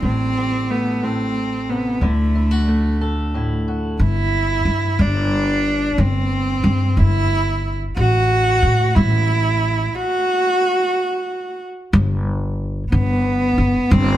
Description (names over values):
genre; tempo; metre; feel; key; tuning
indie folk with a building arrangement; 60 BPM (dotted quarters); 6/8; straight; G major; A4 = 440 Hz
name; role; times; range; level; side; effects
warm cello; melody; 0.0-14.2 s; A3 to F#4; -19 LUFS; right 1 dB; none
fingerpicked steel-string acoustic guitar; accompaniment; 0.0-4.0 s; A2 to A4; -24 LUFS; equal; none
upright bass; bass; 0.0-14.2 s; G1 to A2; -18 LUFS; equal; none
room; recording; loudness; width
moderate stone room reverb, RT60 1.4 s; band playing live in one room; -16 LUFS; side -13 dB against mid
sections
0.0-4.0 A section; 4.0-11.9 B section; 11.9-14.2 C section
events
break 10.0-11.9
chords
0.0 Am7; 2.0 Dadd9; 4.0 G5; 8.0 A5; 10.0 N.C.; 11.9 G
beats
| 0.03 1.02 | 2.02 3.01 | 4.00 5.00 | 5.99 6.98 | 7.97 8.96 | 9.95 10.95 | 11.94 12.93 | 13.92